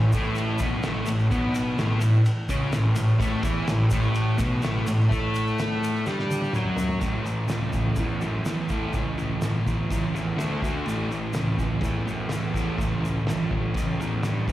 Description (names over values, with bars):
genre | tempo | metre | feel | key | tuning
garage rock duo or trio | 125 BPM | 4/4 | straight | A mixolydian | A4 = 440 Hz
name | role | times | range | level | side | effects
thick fuzz guitar | riff | 0.0-14.5 s | F#2 to A4 | -24 LUFS | equal | distortion
fuzz picked electric bass | bass | 0.0-14.5 s | F#1 to A2 | -29 LUFS | equal | overdrive, tube saturation
cloth-damped thuddy drum kit | drums | 0.1-14.5 s | crash cymbal, kick drum, ride cymbal, snare drum, toms | -30 LUFS | equal | none
tube shaker | percussion | 0.1-14.5 s | none | -46 LUFS | left 2 dB | none
room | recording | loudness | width
small room ambience | live gig heard through the venue's PA, recital hall reverb | -22 LUFS | side -14 dB against mid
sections
0.0-7.0 A section; 7.0-14.5 B section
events
drum fill 6.1-7.0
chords
0.0 N.C.; 7.0 A; 10.4 D5; 10.9 A